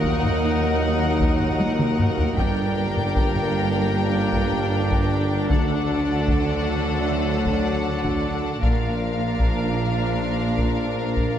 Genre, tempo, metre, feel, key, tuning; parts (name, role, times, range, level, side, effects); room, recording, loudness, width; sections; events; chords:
cinematic, epic orchestral film score; 77 BPM; 4/4; straight; G harmonic minor; A4 = 439 Hz
warm symphonic violin section; melody; 0.0-11.4 s; F5 to G5; -31 LUFS; left 5 dB
warm symphonic violin section; second line; 0.0-11.4 s; A4 to Bb4; -32 LUFS; left 4 dB
rich studio viola section; accompaniment; 0.0-11.4 s; D4 to Eb4; -32 LUFS; right 1 dB
chamber organ, principal chorus; sustained chords; 0.0-11.4 s; Bb3 to Eb5; -30 LUFS; left 2 dB
dark French horn section; sustained chords; 0.0-11.4 s; A3 to Eb4; -29 LUFS; left 5 dB
dark trombone section; sustained chords; 0.0-11.4 s; Bb2 to G3; -32 LUFS; right 3 dB
rich symphonic cello section; bass; 0.0-11.4 s; Eb2 to D3; -28 LUFS; right 2 dB
warm studio double bass section; bass; 0.0-11.4 s; G1 to Eb2; -28 LUFS; right 3 dB
warm tuba; bass; 0.0-11.4 s; G1 to Eb2; -28 LUFS; right 3 dB
taiko ensemble; drums; 0.0-11.4 s; -25 LUFS; left 1 dB
timpani; percussion; 5.5-6.6 s; D3; -31 LUFS; left 2 dB
moderate scoring stage reverb, RT60 1.9 s; -20 LUFS; side -10 dB against mid
0.0-11.4 A section
drum fill 1.6-2.4
0.0 Ebm; 2.4 Gm; 5.5 D; 8.6 Bb